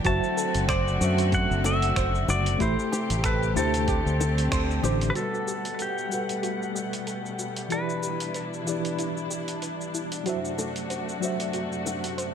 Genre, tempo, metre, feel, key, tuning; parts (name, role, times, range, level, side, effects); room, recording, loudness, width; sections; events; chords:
sunset chillout; 94 BPM; 4/4; swing 56% on 16ths; G major; A4 = 442 Hz
tine electric piano; accompaniment; 0.0-12.3 s; D3 to F#5; -31 LUFS; equal; medium stereo tremolo, auto-pan, digital delay
clear symphonic string section; sustained chords; 0.0-12.3 s; F#2 to F#5; -32 LUFS; left 2 dB; low-pass filter
soft round pluck; arpeggios; 0.0-12.3 s; E4 to C5; -35 LUFS; right 3 dB; chorus, digital delay
dusty soul sampler-style drum kit; drums; 0.0-12.3 s; finger snaps, hi-hat, shaker; -34 LUFS; equal; overdrive, small room ambience
pedal steel guitar; melody; 0.1-9.9 s; G4 to A5; -31 LUFS; left 1 dB; ping-pong delay
fingered electric bass; bass; 0.1-5.1 s; F#1 to F#2; -26 LUFS; equal
electronic kick drum; drums; 0.1-4.7 s; -29 LUFS; equal; overdrive, small room ambience
bongos; percussion; 1.6-5.0, 10.6-12.0 s; -36 LUFS; left 7 dB
light reverb; -24 LUFS; side -8 dB against mid
0.0-5.2 A section; 5.2-12.3 B section
band accent 4.5-4.8; filter sweep on synth pluck 5.2-12.3
0.1 D7/F#; 2.6 Am7; 3.9 D7sus4; 5.2 Gmaj9; 7.7 Em7; 10.3 D7/F#